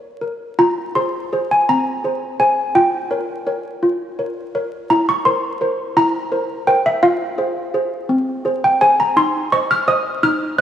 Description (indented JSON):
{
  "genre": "classical, lullaby for handbells",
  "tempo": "56 BPM (dotted quarters)",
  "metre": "6/8",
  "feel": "rubato",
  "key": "F minor",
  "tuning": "A4 = 440 Hz",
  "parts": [
    { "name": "malleted handbells", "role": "solo", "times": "0.0-10.6 s", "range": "Bb3 to F6", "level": "-16 LUFS", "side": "equal", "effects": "none" }
  ],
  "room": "wet plate reverb, RT60 2.8 s",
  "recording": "heard from further back in the room, vinyl crackle",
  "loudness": "-16 LUFS",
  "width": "side -10 dB against mid",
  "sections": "0.6-10.6 A section",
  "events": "none",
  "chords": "0.0 Bbm; 0.6 Fm; 2.8 Gm7b5/F; 4.9 C7/E; 7.0 Fm; 9.2 Cm/Eb",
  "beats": "| 0.59 1.68 | 2.75 3.82 | 4.90 5.96 | 7.03 8.09 | 9.17 10.23"
}